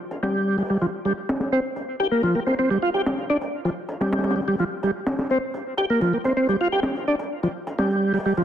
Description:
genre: breakbeat, breaks.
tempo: 127 BPM.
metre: 4/4.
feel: straight.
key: G minor.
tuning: A4 = 440 Hz.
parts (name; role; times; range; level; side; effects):
crunchy breakbeat drum kit; drums; 0.1-8.4 s; hi-hat, snare drum; -29 LUFS; equal; low-pass filter on hats, low-pass filter on snare, low-pass filter on room.
tonewheel organ; riff; 0.2-8.4 s; F3 to G4; -22 LUFS; equal; chorus vibrato, slow rotary speaker, tube saturation, low-pass filter, dub echo.
room: moderate plate reverb, RT60 1.3 s, studio ambience.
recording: dense, heavily limited modern master.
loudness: -21 LUFS.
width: side -10 dB against mid.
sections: 0.0-8.4 A section.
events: none.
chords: none.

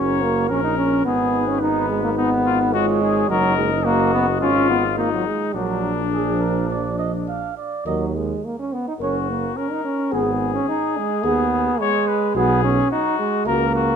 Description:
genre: classical, brass quintet.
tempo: 107 BPM.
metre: 4/4.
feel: straight.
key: unclear.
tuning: A4 = 440 Hz.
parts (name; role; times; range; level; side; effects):
warm trumpet; melody; 0.0-14.0 s; Cb4 to Db5; -24 LUFS; left 11 dB; none.
dark trumpet; second line; 0.0-13.7 s; G#4 to F5; -28 LUFS; right 7 dB; none.
warm French horn; accompaniment; 0.0-13.7 s; Db4 to Bb4; -27 LUFS; left 6 dB; none.
warm trombone; accompaniment; 0.0-14.0 s; F3 to Eb4; -21 LUFS; right 2 dB; none.
warm tuba; bass; 0.0-13.9 s; Gb1 to Eb2; -25 LUFS; right 4 dB; none.
room: moderate recital hall reverb, RT60 1.4 s.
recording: none.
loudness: -18 LUFS.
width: side -7 dB against mid.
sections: 0.0-14.0 A section.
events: none.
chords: 0.0 Gb; 1.1 Abm; 3.3 Ebm/Gb; 4.4 Ab7sus2; 5.6 Bb; 7.9 Eb5; 9.0 Gb; 10.1 Abm; 12.4 G#m7/B.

